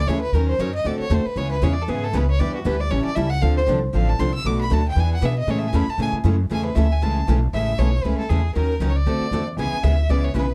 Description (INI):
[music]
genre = acoustic string swing (jazz manouche)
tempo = 234 BPM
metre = 4/4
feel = swing 56% on 8ths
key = A major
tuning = A4 = 440 Hz
[part]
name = clear violin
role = melody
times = 0.0-10.5 s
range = F#4 to E6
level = -29 LUFS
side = equal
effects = none
[part]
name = upright bass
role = bass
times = 0.0-10.5 s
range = A1 to B2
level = -23 LUFS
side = equal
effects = none
[part]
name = picked steel-string acoustic guitar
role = accompaniment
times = 0.1-10.5 s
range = B2 to A#4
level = -29 LUFS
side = equal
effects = none
[part]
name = picked steel-string acoustic guitar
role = accompaniment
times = 0.1-10.5 s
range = B2 to B4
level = -31 LUFS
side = equal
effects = none
[sound]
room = moderate studio reverb, RT60 0.5 s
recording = dark, warm production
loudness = -21 LUFS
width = mono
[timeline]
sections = 0.0-7.5 A section; 7.5-10.5 B section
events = violin solo 0.0-7.5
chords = 0.3 D#m7; 0.9 D9; 1.4 C#m7; 2.4 Em7; 2.9 A7; 3.4 Dm7; 4.4 Bm7; 5.0 E7; 5.5 Amaj7; 8.6 D#m7; 9.1 D9; 9.6 C#m7